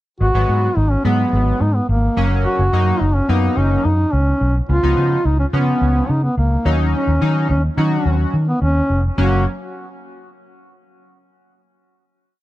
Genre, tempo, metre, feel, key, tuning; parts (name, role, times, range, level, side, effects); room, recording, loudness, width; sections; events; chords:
pop; 107 BPM; 4/4; straight; F# major; A4 = 440 Hz
mellow duduk; melody; 0.2-9.4 s; A#3 to F#4; -20 LUFS; equal; tape echo
chorused polysynth; accompaniment; 0.2-9.4 s; E#3 to F#4; -23 LUFS; left 1 dB
vintage muted fingered electric bass; bass; 0.2-9.4 s; E#1 to D#3; -17 LUFS; equal
small room ambience; dry, close 1970s-style studio recording, lossy compression artefacts; -14 LUFS; side -15 dB against mid
0.2-9.2 verse; 9.2-11.4 final chord
0.2 G#m7; 2.2 F#; 4.7 C#7; 6.7 D#m7; 9.2 F#